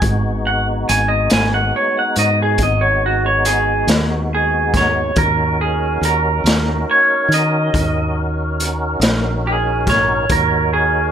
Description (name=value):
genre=slow blues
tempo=47 BPM (dotted quarters)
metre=12/8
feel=straight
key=Eb minor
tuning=A4 = 440 Hz
part: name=tonewheel organ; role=sustained chords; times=0.0-11.1 s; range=Ab3 to Db5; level=-23 LUFS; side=equal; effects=slow rotary speaker, overdrive, chorus vibrato
part: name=fingered electric bass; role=bass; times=0.0-11.1 s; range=Ab1 to Eb3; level=-20 LUFS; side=equal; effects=none
part: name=raw garage drum kit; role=drums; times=0.0-10.5 s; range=hi-hat, kick drum, snare drum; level=-20 LUFS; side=equal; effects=none
part: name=electric guitar through a small old amp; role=second line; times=0.5-11.1 s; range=Gb4 to Ab5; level=-16 LUFS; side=right 1 dB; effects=none
room=light reverb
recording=none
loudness=-14 LUFS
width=side -9 dB against mid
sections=0.0-11.1 A section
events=clean electric guitar solo 0.0-11.1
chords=0.0 Abm7; 5.2 Ebm7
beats=| 0.03 1.31 2.60 3.88 | 5.16 6.45 7.73 9.02 | 10.30